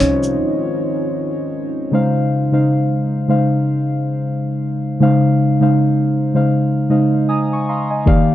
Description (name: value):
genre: lo-fi hip hop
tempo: 78 BPM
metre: 4/4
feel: swing 58% on 16ths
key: Db major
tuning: A4 = 440 Hz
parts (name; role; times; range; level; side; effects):
- muted felt-like synth keys; accompaniment; 0.0-8.3 s; Db3 to Eb6; -15 LUFS; equal; chorus, cassette tape, low-pass filter
- deep dark ambient pad; sustained chords; 0.0-1.9 s; Eb3 to F4; -25 LUFS; right 1 dB; chorus, built-in reverb, low-pass filter, plate reverb
- dusty soul sampler-style drum kit; drums; 0.0-0.4, 8.1-8.3 s; hi-hat, kick drum, shaker; -16 LUFS; equal; none
room: wet small room ambience, RT60 0.5 s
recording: dark, warm production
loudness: -14 LUFS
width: side -13 dB against mid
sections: 0.0-1.9 A section; 1.9-8.3 B section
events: synth keys solo 0.0-1.9; break 0.4-1.9; synth keys fill 6.5-8.1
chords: 0.0 Dbmaj9